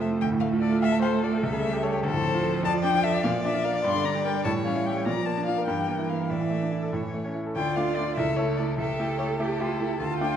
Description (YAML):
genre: quick classical-period movement for piano quartet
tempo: 99 BPM (dotted quarters)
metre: 6/8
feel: straight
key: unclear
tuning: A4 = 443 Hz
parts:
  - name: warm violin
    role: melody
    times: 0.0-10.4 s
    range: A4 to C6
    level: -30 LUFS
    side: left 6 dB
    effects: none
  - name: clear violin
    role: second line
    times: 0.0-10.4 s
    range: E4 to D5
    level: -33 LUFS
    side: left 3 dB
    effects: none
  - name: rich cello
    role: second line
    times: 0.0-10.4 s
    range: E3 to A4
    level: -29 LUFS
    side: right 5 dB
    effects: none
  - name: bright concert grand piano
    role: accompaniment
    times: 0.0-10.4 s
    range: C#2 to A5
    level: -28 LUFS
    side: equal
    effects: none
room: wet scoring stage reverb, RT60 1.5 s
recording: none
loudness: -23 LUFS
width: side -9 dB against mid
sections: 0.0-7.6 A section; 7.6-10.4 B section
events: none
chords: 0.2 Dm; 1.4 A7/C#; 2.0 Dm7; 2.6 Dm/F; 3.2 Bb; 3.8 Gm; 4.5 A7; 5.1 Bb; 5.7 Edim/G; 6.3 Asus4; 6.9 A; 7.6 Dm; 8.2 A/C#; 8.8 A7/C#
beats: | 0.21 0.82 | 1.43 2.04 | 2.64 3.25 | 3.85 4.45 | 5.06 5.68 | 6.30 6.93 | 7.57 8.18 | 8.79 9.40 | 10.01